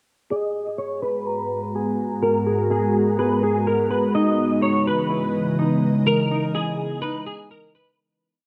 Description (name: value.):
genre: hip hop.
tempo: 125 BPM.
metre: 4/4.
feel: half-time.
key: G# minor.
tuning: A4 = 438 Hz.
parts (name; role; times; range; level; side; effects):
clean electric guitar; melody; 0.3-8.0 s; G#4 to D#5; -27 LUFS; equal; ensemble chorus, low-pass filter, digital delay.
ethereal airy pad; sustained chords; 1.2-7.9 s; G#2 to A#5; -24 LUFS; equal; ensemble chorus, built-in reverb, low-pass filter.
Celtic harp; arpeggios; 0.3-8.5 s; D#4 to A#5; -29 LUFS; equal; low-pass filter, digital delay.
room: light reverb, small room ambience.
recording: rough home demo mix.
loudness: -22 LUFS.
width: mono.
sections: 0.3-8.0 breakdown.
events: filter sweep 0.3-8.0; fade-out 6.1-8.0.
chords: 0.3 G#m9; 4.1 C#m9.